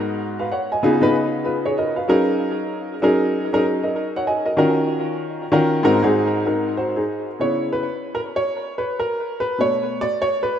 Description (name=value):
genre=hip hop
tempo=96 BPM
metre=4/4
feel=swing 61% on 16ths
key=unclear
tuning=A4 = 442 Hz
part: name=warm upright piano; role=solo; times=0.0-10.6 s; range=G#2 to G#5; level=-18 LUFS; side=equal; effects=tape echo
room=moderate lush hall reverb, RT60 2.4 s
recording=rough home demo mix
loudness=-18 LUFS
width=side -9 dB against mid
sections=0.0-7.1 A section; 7.1-10.6 B section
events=upright piano solo 7.1-10.6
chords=0.0 G#m7; 0.8 C#7; 2.1 F#6; 4.6 D#m7; 5.8 G#7; 7.1 C#m7; 9.6 Bm7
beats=0.20 0.83 1.45 | 2.08 2.70 3.33 3.95 | 4.58 5.20 5.83 6.45 | 7.08 7.70 8.33 8.95 | 9.58 10.20